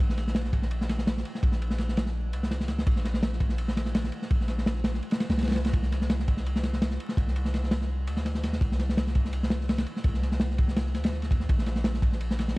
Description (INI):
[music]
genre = drum and bass, jungle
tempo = 167 BPM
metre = 4/4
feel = swing 53% on 16ths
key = C minor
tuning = A4 = 440 Hz
[part]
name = long sustained 808-style bass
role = bass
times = 0.0-12.6 s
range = Bb1 to Eb2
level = -28 LUFS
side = equal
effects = none
[part]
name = crunchy breakbeat drum kit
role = drums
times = 0.1-12.6 s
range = kick drum, ride cymbal, snare drum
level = -27 LUFS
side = equal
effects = none
[sound]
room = little or no reverb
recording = dark, warm production, vinyl crackle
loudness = -25 LUFS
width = side -22 dB against mid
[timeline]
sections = 0.0-12.6 A section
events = kick drops out 5.0-5.7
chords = none